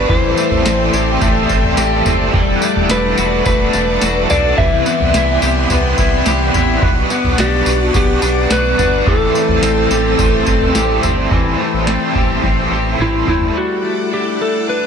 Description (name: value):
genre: dream pop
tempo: 107 BPM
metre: 4/4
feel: straight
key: unclear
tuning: A4 = 441 Hz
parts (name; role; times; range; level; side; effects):
- electric slide guitar; melody; 0.0-14.9 s; E4 to E5; -18 LUFS; equal; tape echo
- cranked stack guitar; accompaniment; 0.0-13.6 s; A2 to B4; -20 LUFS; right 4 dB; overdrive, tremolo, ensemble chorus
- string machine, violins; sustained chords; 0.0-14.9 s; B3 to E6; -22 LUFS; right 1 dB; ensemble chorus
- electric guitar at the edge of break-up; arpeggios; 0.0-14.9 s; E3 to G4; -18 LUFS; left 6 dB; lush chorus, tape echo
- round analog bass; bass; 0.0-13.5 s; E1 to C2; -20 LUFS; equal; none
- booming analog drum machine; drums; 0.1-13.5 s; kick drum, snare drum, tambourine, toms; -18 LUFS; right 1 dB; none
- worn celesta; texture; 1.1-7.1, 11.7-13.4 s; G5 to F#6; -32 LUFS; equal; none
room: moderate concert hall reverb, RT60 2.3 s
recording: none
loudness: -12 LUFS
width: side -7 dB against mid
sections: 0.0-11.3 A section; 11.3-13.6 B section; 13.6-14.9 C section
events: drum fill 12.4-13.6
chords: 0.1 Am7; 2.3 Em11; 4.6 Cmaj7; 6.8 Gmaj7/B; 9.1 Am7; 13.6 Em11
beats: | 0.09 0.65 1.21 1.77 | 2.33 2.90 3.46 4.02 | 4.58 5.14 5.70 6.26 | 6.82 7.38 7.94 8.50 | 9.06 9.62 10.19 10.75 | 11.31 11.87 12.43 12.99 | 13.55 14.11 14.67